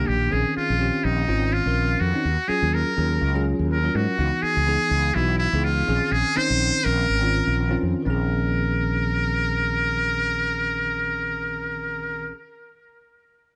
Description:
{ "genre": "electric jazz fusion", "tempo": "124 BPM", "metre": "4/4", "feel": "swing 55% on 16ths", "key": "Bb minor", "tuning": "A4 = 442 Hz", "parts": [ { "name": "trumpet with metal mute", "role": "melody", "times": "0.0-12.3 s", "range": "Eb4 to C5", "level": "-26 LUFS", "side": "equal", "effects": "none" }, { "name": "bell-like tine electric piano", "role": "accompaniment", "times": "0.0-12.4 s", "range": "Eb3 to Bb4", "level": "-29 LUFS", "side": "equal", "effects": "none" }, { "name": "mellow fretless electric bass", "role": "bass", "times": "0.0-12.3 s", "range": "Ab1 to Ab2", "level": "-27 LUFS", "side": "equal", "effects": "analog chorus" } ], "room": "light reverb, small room ambience", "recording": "nothing above 10.4 kHz", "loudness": "-23 LUFS", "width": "mono", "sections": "0.0-8.1 A section; 8.1-11.9 B section", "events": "none", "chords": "0.3 Bbm11; 2.2 Ebm11; 4.2 Dbm11; 5.9 Bbm11" }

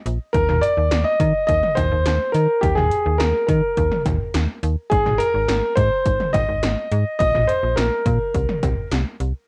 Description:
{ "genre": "synth-pop", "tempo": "105 BPM", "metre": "4/4", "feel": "straight", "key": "unclear", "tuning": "A4 = 440 Hz", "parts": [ { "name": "slap-like FM bass", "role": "bass", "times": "0.1-9.3 s", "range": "Ab1 to Eb3", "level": "-23 LUFS", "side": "equal", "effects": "none" }, { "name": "80s electronic pad drums", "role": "drums", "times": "0.1-9.3 s", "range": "cowbell, hi-hat, kick drum, snare drum, toms", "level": "-26 LUFS", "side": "equal", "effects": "gated reverb on snare and toms, cassette tape" }, { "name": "warm concert grand piano", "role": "melody", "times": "0.3-8.9 s", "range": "G4 to Eb5", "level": "-22 LUFS", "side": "equal", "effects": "cassette tape, tape echo" } ], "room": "moderate studio reverb, RT60 0.5 s", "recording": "home recording on cassette", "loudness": "-20 LUFS", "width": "mono", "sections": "0.0-9.5 A section", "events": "none", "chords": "0.3 Eb5; 4.9 Ab; 7.2 Bbsus24; 8.3 Bbsus2/C" }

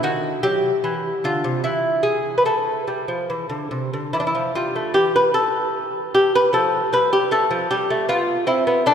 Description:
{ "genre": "classical, baroque-style dance for lute", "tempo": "71-79 BPM", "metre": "3/4", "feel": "rubato", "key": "A minor", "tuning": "A4 = 439 Hz", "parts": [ { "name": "lute", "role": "solo", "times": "0.0-8.9 s", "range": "C3 to B4", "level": "-18 LUFS", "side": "equal", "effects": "none" } ], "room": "wet church reverb, RT60 3.9 s", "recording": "recorded in a church or concert hall", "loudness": "-18 LUFS", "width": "side -8 dB against mid", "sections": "0.0-4.9 A section; 4.9-8.9 A section", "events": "none", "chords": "0.0 D#m; 0.8 Cadd11; 1.6 N.C.; 2.5 A5; 4.9 N.C.; 6.5 Fadd9; 7.3 A5" }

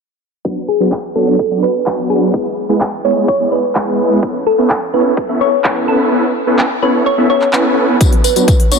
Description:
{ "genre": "EDM, festival progressive house", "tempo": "127 BPM", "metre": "4/4", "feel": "straight", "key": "A major", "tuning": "A4 = 440 Hz", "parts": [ { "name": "supersaw chords", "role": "riff", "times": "0.4-8.8 s", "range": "F#3 to E5", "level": "-14 LUFS", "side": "equal", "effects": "sidechain pumping, low-pass filter" }, { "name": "electronic kick drum", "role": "drums", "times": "0.4-8.6 s", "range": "none", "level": "-15 LUFS", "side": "equal", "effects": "overdrive, high-pass filter on kick" }, { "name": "thumb-piano-like synth pluck", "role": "melody", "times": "0.7-8.8 s", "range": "G#4 to C#5", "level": "-16 LUFS", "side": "equal", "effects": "chorus, phaser, dub echo" }, { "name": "big-room dance drum kit", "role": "drums", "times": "0.9-8.8 s", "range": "handclaps, hi-hat, tambourine", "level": "-21 LUFS", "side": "left 1 dB", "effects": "overdrive, low-pass filter on snare, low-pass filter on hats, low-pass filter on perc" } ], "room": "light reverb, digital ambience", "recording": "low-pass filter", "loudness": "-11 LUFS", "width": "side -5 dB against mid", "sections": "0.4-8.0 A section", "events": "filter sweep on drum 0.4-8.0; filter sweep 0.4-8.0; kick drops out 6.1-8.0", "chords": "0.4 Bm; 2.3 E; 4.2 Aadd9; 8.0 Bm" }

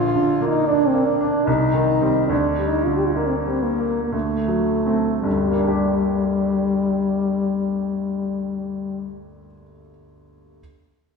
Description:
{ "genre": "classical, romantic duo for French horn and grand piano", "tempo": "51-77 BPM", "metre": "3/4", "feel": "rubato", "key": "G minor", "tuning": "A4 = 441 Hz", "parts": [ { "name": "warm French horn", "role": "melody", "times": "0.0-9.1 s", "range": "G3 to G4", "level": "-20 LUFS", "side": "left 1 dB", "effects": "none" }, { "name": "bright grand piano", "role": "accompaniment", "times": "0.0-10.6 s", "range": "G1 to G4", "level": "-23 LUFS", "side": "right 1 dB", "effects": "none" } ], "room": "wet stone room reverb, RT60 1.3 s", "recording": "heard from further back in the room", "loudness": "-18 LUFS", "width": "side -4 dB against mid", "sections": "0.0-5.2 A section; 5.2-8.3 B section", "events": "slowing down 0.0-5.2", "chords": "0.0 Bb; 1.5 Cm; 2.3 Gm/D; 4.1 D7; 5.2 Gm" }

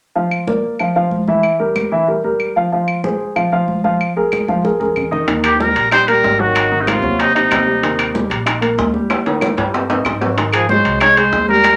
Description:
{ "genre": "Afro-Cuban jazz", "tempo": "188 BPM", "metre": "4/4", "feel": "straight", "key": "unclear", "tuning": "A4 = 439 Hz", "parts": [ { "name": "dark baby grand piano", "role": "accompaniment", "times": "0.2-11.8 s", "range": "Eb3 to F5", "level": "-20 LUFS", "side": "equal", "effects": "none" }, { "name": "congas", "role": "percussion", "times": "0.2-11.8 s", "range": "none", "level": "-28 LUFS", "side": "equal", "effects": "none" }, { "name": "claves", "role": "percussion", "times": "0.3-11.8 s", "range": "none", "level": "-26 LUFS", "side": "equal", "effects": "none" }, { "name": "upright bass", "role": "bass", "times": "5.3-11.8 s", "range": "Ab1 to Ab2", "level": "-25 LUFS", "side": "equal", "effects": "none" }, { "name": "bongos", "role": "percussion", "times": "5.3-11.8 s", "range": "none", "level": "-27 LUFS", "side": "equal", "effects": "none" }, { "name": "timbales", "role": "percussion", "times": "5.3-11.8 s", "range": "none", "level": "-23 LUFS", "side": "equal", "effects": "none" }, { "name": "warm trumpet", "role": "melody", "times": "5.4-8.3, 10.5-11.8 s", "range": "Eb4 to Db5", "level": "-16 LUFS", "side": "equal", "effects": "none" }, { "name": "breathy trombone", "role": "second line", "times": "5.4-8.3, 10.5-11.8 s", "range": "C3 to Ab3", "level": "-24 LUFS", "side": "equal", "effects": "none" } ], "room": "wet small room reverb, RT60 0.5 s", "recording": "none", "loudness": "-16 LUFS", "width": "mono", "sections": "0.2-5.3 A section; 5.3-11.8 B section", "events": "drum fill 4.3-5.3, 9.1-10.4", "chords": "0.2 Bb; 1.4 Edim; 2.7 Fm; 4.0 Bb5; 5.3 Eb; 6.6 Ab7; 7.8 Eb; 10.4 Ab7" }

